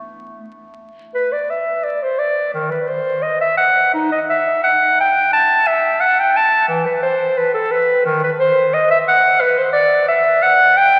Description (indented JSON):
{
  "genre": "classical, baroque-style fantasia for unaccompanied clarinet",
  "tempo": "88 BPM",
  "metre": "4/4",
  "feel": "rubato",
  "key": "E minor",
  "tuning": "A4 = 440 Hz",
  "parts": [
    { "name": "warm clarinet", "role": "solo", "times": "0.0-11.0 s", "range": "D#3 to A5", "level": "-16 LUFS", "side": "equal", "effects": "none" }
  ],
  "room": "wet cathedral reverb, RT60 5.9 s",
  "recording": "very old 78 rpm record, vinyl crackle",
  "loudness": "-16 LUFS",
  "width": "mono",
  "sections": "0.0-1.2 A section; 1.2-11.0 A section",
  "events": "none",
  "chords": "none"
}